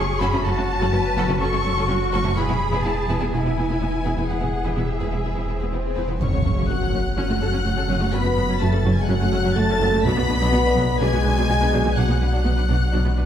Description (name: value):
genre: cinematic, hybrid orchestral and electronic film score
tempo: 125 BPM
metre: 4/4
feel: straight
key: F# minor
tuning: A4 = 440 Hz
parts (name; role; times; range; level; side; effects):
- warm symphonic violin section; melody; 0.0-13.3 s; E5 to B6; -28 LUFS; left 3 dB; none
- dark French horn section; sustained chords; 0.0-13.3 s; C#3 to F#4; -27 LUFS; left 2 dB; none
- punchy sub bass; bass; 0.0-13.3 s; E1 to B1; -26 LUFS; equal; none
- warm symphonic cello section; bass; 0.0-13.2 s; F#2 to B4; -27 LUFS; right 2 dB; none
- bright symphonic violin section; second line; 0.2-13.3 s; A3 to B5; -30 LUFS; left 2 dB; none
- rich symphonic viola section; accompaniment; 0.2-13.2 s; F#3 to B4; -27 LUFS; right 1 dB; none
- rich symphonic double bass section; bass; 0.2-13.2 s; E1 to B1; -26 LUFS; right 2 dB; none
- swell and impact; sound effects; 5.4-8.1 s; none; -28 LUFS; left 1 dB; none
room: wet scoring stage reverb, RT60 1.7 s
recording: heard from further back in the room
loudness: -18 LUFS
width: side -9 dB against mid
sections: 0.0-6.2 A section; 6.2-13.3 B section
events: swell 5.4-6.2; impact 6.2-8.1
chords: 0.0 F#m; 2.4 E; 6.2 F#m; 10.0 Bm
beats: | 0.45 0.93 1.41 1.89 | 2.37 2.85 3.33 3.81 | 4.29 4.77 5.25 5.73 | 6.21 6.69 7.17 7.65 | 8.13 8.61 9.09 9.57 | 10.05 10.53 11.01 11.49 | 11.97 12.45 12.93